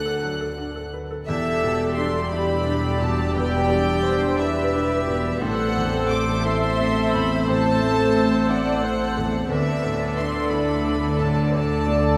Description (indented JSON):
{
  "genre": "cinematic, emotional film score for orchestra",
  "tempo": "58 BPM (dotted quarters)",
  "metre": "6/8",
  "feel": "rubato",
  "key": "E minor",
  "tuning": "A4 = 440 Hz",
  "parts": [
    { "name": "warm symphonic violin section", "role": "melody", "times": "0.0-12.2 s", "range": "E5 to F#6", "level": "-31 LUFS", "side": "equal", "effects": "none" },
    { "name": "warm symphonic violin section", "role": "second line", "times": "0.0-12.2 s", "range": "G4 to F#5", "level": "-32 LUFS", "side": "equal", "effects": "none" },
    { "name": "clear baby grand piano", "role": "accompaniment", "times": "0.0-12.2 s", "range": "A1 to B4", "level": "-31 LUFS", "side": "equal", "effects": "none" },
    { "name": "dark symphonic viola section", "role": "accompaniment", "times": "0.0-12.2 s", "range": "B3 to E5", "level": "-31 LUFS", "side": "equal", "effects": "none" },
    { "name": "dark symphonic double bass section", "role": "bass", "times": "0.0-12.2 s", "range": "E1 to D2", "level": "-32 LUFS", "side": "equal", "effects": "none" },
    { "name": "rich symphonic cello section", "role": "bass", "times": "0.0-12.2 s", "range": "E2 to D3", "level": "-30 LUFS", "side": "equal", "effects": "none" },
    { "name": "bright clarinet", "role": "second line", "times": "1.3-12.2 s", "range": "G4 to A4", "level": "-34 LUFS", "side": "equal", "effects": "none" },
    { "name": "mellow cor anglais", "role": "second line", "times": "1.3-12.2 s", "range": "C5 to D5", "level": "-34 LUFS", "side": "equal", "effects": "none" },
    { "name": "silver concert flute", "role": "second line", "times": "1.3-12.2 s", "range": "E6", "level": "-36 LUFS", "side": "equal", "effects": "none" },
    { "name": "mellow French horn section", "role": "sustained chords", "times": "1.3-12.2 s", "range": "G3 to D4", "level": "-30 LUFS", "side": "equal", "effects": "none" }
  ],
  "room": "wet cathedral reverb, RT60 6.3 s",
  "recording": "in a vast, echoing space",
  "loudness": "-22 LUFS",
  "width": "mono",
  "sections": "0.0-1.3 A section; 1.3-12.2 B section",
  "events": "none",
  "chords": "0.0 D; 1.3 Em7; 5.4 Am; 9.5 Dsus2"
}